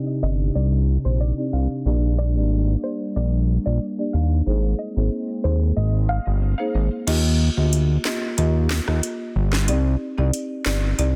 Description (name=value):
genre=dancehall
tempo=92 BPM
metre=4/4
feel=straight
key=Eb major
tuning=A4 = 445 Hz
part: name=hollow soft pad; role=sustained chords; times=0.0-7.0 s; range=C3 to G4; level=-32 LUFS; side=equal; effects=chorus
part: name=analog pluck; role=melody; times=0.2-6.2 s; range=C5 to F5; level=-34 LUFS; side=equal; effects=chorus, digital delay
part: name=marimba with soft mallets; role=accompaniment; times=0.2-11.2 s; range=Bb3 to Eb5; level=-30 LUFS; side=equal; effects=none
part: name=fat analog bass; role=bass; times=0.2-11.2 s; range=G1 to Eb2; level=-21 LUFS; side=equal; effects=none
part: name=island pop drum kit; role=drums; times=7.1-11.1 s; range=crash cymbal, handclaps, hi-hat, rim click, snare drum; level=-29 LUFS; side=equal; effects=none
room=little or no reverb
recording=dense, heavily limited modern master, low-pass filter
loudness=-22 LUFS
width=mono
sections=0.0-7.1 A section; 7.1-11.2 B section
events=filter sweep 0.0-7.1; kick muted 7.1-11.2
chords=0.0 Cmadd9; 1.9 Gm; 4.5 Abadd9; 7.1 Ebadd9; 9.7 Cmadd9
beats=0.55 1.21 | 1.86 2.51 3.16 3.81 | 4.47 5.12 5.77 6.42 | 7.07 7.73 8.38 9.03 | 9.68 10.34 10.99